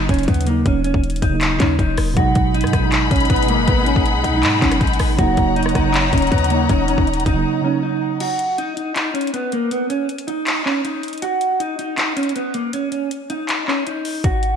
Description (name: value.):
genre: hip hop, trap.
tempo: 159 BPM.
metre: 4/4.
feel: half-time.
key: Eb minor.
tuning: A4 = 444 Hz.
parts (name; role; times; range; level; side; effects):
mellow electric guitar; melody; 0.0-14.6 s; Bb3 to Gb4; -21 LUFS; right 1 dB; analog chorus, low-pass filter, analog delay.
muted felt-like synth keys; accompaniment; 0.0-8.2 s; Cb3 to Eb4; -22 LUFS; right 5 dB; chorus, low-pass filter.
clean 808-style bass; bass; 0.0-7.4, 14.2-14.6 s; Eb1 to Ab2; -20 LUFS; left 1 dB; none.
trap drum kit; drums; 0.1-14.5 s; crash cymbal, handclaps, hi-hat, kick drum, rim click; -21 LUFS; left 1 dB; vintage 12-bit sampler grit.
dark studio string section; sustained chords; 2.2-8.2 s; Eb4 to Cb6; -22 LUFS; left 4 dB; none.
room: moderate plate reverb, RT60 1.7 s, digital ambience.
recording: dreamy mix soaked in reverb.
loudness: -16 LUFS.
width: side -7 dB against mid.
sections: 0.0-8.2 A section; 8.2-14.6 B section.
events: break 7.5-8.2, 8.2-14.2.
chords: 0.0 Ebm7; 2.2 Abm7; 5.2 Ebm7; 8.2 N.C..